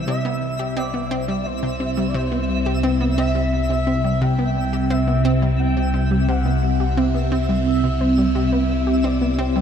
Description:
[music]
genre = ambient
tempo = 87 BPM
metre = 4/4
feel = straight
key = C major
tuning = A4 = 437 Hz
[part]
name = phased string machine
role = sustained chords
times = 0.0-9.6 s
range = C3 to E5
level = -22 LUFS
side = right 1 dB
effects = ensemble chorus, phaser
[part]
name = analog drone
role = bass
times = 1.0-9.6 s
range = C2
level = -22 LUFS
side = equal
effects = chorus
[part]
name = twinkling granular texture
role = texture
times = 0.0-9.6 s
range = E5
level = -33 LUFS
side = equal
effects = built-in reverb
[part]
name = expressive portamento lead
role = melody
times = 0.1-9.6 s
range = C5 to G5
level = -28 LUFS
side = left 1 dB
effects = lush chorus, tape echo
[part]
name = analog pluck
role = riff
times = 0.1-9.6 s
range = C3 to G4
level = -24 LUFS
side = equal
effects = chorus, tape echo
[sound]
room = wet spring reverb, RT60 2.4 s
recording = echo-heavy mix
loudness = -18 LUFS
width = side -8 dB against mid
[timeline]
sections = 0.0-9.6 A section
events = none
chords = 0.0 C

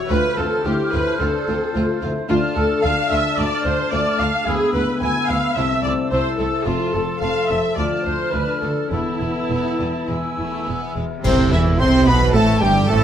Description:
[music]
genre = classical, dramatic, fast romantic movement for symphony orchestra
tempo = 109 BPM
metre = 4/4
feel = rubato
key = A minor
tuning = A4 = 440 Hz
[part]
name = warm symphonic violin section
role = melody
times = 0.0-13.0 s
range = E4 to C6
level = -30 LUFS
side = left 3 dB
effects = none
[part]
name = dark clarinet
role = second line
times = 0.0-10.7 s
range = E4 to G#5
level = -30 LUFS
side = left 1 dB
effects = none
[part]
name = small flute group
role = second line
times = 0.0-13.0 s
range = C5 to F6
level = -28 LUFS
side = equal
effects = none
[part]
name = warm French horn section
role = sustained chords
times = 0.0-13.0 s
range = C3 to A4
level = -25 LUFS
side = left 3 dB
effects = none
[part]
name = concert harp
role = arpeggios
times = 0.0-13.0 s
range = A2 to C#6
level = -29 LUFS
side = left 9 dB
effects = none
[part]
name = clear studio violin section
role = second line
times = 0.1-13.0 s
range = G3 to C5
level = -33 LUFS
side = left 1 dB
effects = none
[part]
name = mellow cor anglais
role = second line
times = 0.1-13.0 s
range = C4 to A5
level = -30 LUFS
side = right 3 dB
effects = none
[part]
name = warm symphonic viola section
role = accompaniment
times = 0.1-13.0 s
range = C3 to G#5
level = -24 LUFS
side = right 1 dB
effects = none
[part]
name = rich studio double bass section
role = bass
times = 0.1-13.0 s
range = E1 to D2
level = -25 LUFS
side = right 2 dB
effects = none
[part]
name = rich symphonic cello section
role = bass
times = 0.1-13.0 s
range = C2 to C3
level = -24 LUFS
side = right 2 dB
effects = none
[part]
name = cymbal swell, clash cymbals and concert bass drum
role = percussion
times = 8.9-12.3 s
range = none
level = -26 LUFS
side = equal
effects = none
[part]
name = bright trombone section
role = sustained chords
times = 11.2-13.0 s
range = C3 to C4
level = -26 LUFS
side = right 3 dB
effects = none
[part]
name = dark trumpet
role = stabs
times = 11.2-13.0 s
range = C4 to C5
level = -25 LUFS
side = right 2 dB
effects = none
[sound]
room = moderate recital hall reverb, RT60 1.4 s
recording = none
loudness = -17 LUFS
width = side -9 dB against mid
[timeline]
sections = 0.0-11.2 A section; 11.2-13.0 B section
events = band accent 11.2-11.8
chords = 0.1 Dm7; 2.3 Dm; 4.5 E7/D; 5.6 Am/C; 6.7 F; 7.8 Dm; 8.9 Esus4; 10.1 E; 11.2 Am

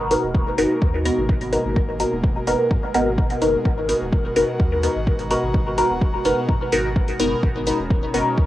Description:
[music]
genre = dub techno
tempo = 127 BPM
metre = 4/4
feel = straight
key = G# minor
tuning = A4 = 443 Hz
[part]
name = airy breathy pad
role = sustained chords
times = 0.0-8.5 s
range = B2 to F#4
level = -30 LUFS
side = equal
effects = chorus, sidechain pumping, cassette tape
[part]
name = soft dub sub bass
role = bass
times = 0.0-8.5 s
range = D#1 to G#2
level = -28 LUFS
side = equal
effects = tube saturation, sidechain pumping
[part]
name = filtered dub chord stab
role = stabs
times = 0.1-8.4 s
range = B3 to A#4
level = -20 LUFS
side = equal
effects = phaser, sidechain pumping, cassette tape, dub echo
[part]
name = electronic hi-hat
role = drums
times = 0.1-8.2 s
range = none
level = -33 LUFS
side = equal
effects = overdrive, cassette tape
[part]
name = electronic kick drum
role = drums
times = 0.3-8.5 s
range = none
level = -20 LUFS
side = equal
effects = overdrive, cassette tape
[sound]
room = light reverb, digital ambience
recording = home recording on cassette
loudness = -18 LUFS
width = side -14 dB against mid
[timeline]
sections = 0.0-8.5 A section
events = none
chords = 0.0 G#m7

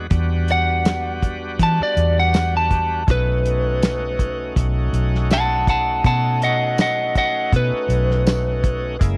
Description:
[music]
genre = straight-eighth soul blues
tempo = 81 BPM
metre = 4/4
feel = swing 54% on 16ths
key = B mixolydian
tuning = A4 = 440 Hz
[part]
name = bright tonewheel organ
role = accompaniment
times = 0.0-9.2 s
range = C#3 to F#4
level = -31 LUFS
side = equal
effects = slow rotary speaker, overdrive
[part]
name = vintage muted fingered electric bass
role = bass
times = 0.0-9.2 s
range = F#1 to E3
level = -23 LUFS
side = equal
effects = tube saturation
[part]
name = cloth-damped thuddy drum kit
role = drums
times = 0.1-9.2 s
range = hi-hat, kick drum, snare drum, tambourine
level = -22 LUFS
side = equal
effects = none
[part]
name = lightly driven lead guitar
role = melody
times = 0.5-9.0 s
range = B4 to A5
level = -23 LUFS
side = equal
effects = none
[sound]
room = little or no reverb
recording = none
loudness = -19 LUFS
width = mono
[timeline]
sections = 0.0-9.2 A section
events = lead electric guitar solo 0.0-9.2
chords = 0.1 Em7; 3.1 B9

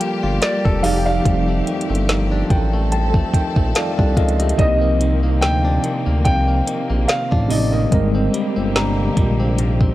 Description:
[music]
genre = contemporary R&B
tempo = 72 BPM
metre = 4/4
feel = swing 54% on 16ths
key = unclear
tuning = A4 = 440 Hz
[part]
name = dark concert grand piano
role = melody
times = 0.0-9.4 s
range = D5 to G5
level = -24 LUFS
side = equal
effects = none
[part]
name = bright tine electric piano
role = accompaniment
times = 0.0-9.9 s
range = C3 to A5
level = -23 LUFS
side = equal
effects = medium stereo tremolo
[part]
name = warm studio string section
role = sustained chords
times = 0.0-9.9 s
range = C3 to A4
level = -26 LUFS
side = left 1 dB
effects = none
[part]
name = direct-recorded clean electric guitar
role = arpeggios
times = 0.0-9.9 s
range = F2 to A4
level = -26 LUFS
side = left 1 dB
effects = tape echo
[part]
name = smooth R&B drum kit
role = drums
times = 0.0-9.9 s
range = hi-hat, kick drum, snare drum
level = -19 LUFS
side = equal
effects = none
[part]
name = celesta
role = texture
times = 0.0-9.9 s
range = D5 to Bb5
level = -34 LUFS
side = equal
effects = tape echo
[part]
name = smooth synth bass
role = bass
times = 0.2-9.9 s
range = F1 to D2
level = -19 LUFS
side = equal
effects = none
[sound]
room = small room reverb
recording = dry, gritty hardware recording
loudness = -15 LUFS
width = side -15 dB against mid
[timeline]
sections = 0.0-9.9 A section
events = tine electric piano fill 2.1-4.6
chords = 0.0 Gm9; 0.8 F13; 4.6 Cm9; 7.9 Abmaj9#11

